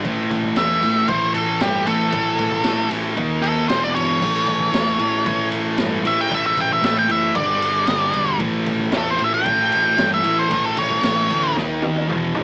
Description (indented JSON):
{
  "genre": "garage rock duo or trio",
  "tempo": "115 BPM",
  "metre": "4/4",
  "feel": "straight",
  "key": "A mixolydian",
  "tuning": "A4 = 444 Hz",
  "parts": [
    { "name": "thick fuzz guitar", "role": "riff", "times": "0.0-12.4 s", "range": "E2 to D#4", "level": "-21 LUFS", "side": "equal", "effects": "distortion, cassette tape" },
    { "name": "hollow-body short-scale picked electric bass", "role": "bass", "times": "0.0-12.4 s", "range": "E1 to G2", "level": "-30 LUFS", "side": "equal", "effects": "none" },
    { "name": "raw garage drum kit", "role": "drums", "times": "0.0-12.4 s", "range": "crash cymbal, kick drum, ride cymbal, snare drum, toms", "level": "-24 LUFS", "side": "equal", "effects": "cassette tape" },
    { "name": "octave-fuzz lead guitar", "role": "melody", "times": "0.6-11.5 s", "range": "G4 to G5", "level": "-19 LUFS", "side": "equal", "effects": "distortion, cassette tape" }
  ],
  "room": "little or no reverb",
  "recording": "home recording on cassette, small speaker sound",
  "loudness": "-16 LUFS",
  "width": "side -30 dB against mid",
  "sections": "0.0-12.4 A section",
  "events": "lead electric guitar solo 0.0-12.4; drum fill 11.6-12.4",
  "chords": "0.1 A5; 3.2 D#5; 3.7 E5; 4.2 A; 7.4 G5; 8.4 A; 11.6 D#5"
}